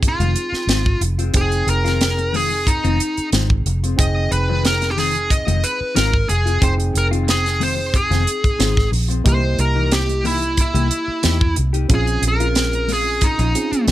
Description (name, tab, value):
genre	straight-eighth soul blues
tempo	91 BPM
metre	4/4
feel	straight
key	F minor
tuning	A4 = 440 Hz
part	reed electric piano	accompaniment	0.0-13.9 s	Bb3 to G5	-28 LUFS	right 4 dB	overdrive
part	mellow electric guitar	stabs	0.0-13.9 s	Eb3 to G4	-27 LUFS	left 7 dB	phaser
part	vintage muted fingered electric bass	bass	0.0-13.9 s	F1 to E2	-20 LUFS	equal	none
part	tight funk drum kit	drums	0.0-13.9 s	hi-hat, kick drum, snare drum	-20 LUFS	equal	none
part	smooth overdriven lead guitar	melody	0.1-13.8 s	Eb4 to Eb5	-21 LUFS	equal	none
room	little or no reverb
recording	none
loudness	-16 LUFS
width	side -14 dB against mid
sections	0.0-13.9 A section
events	none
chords	0.0 Fm7; 9.3 C7#9; 11.9 Bbm7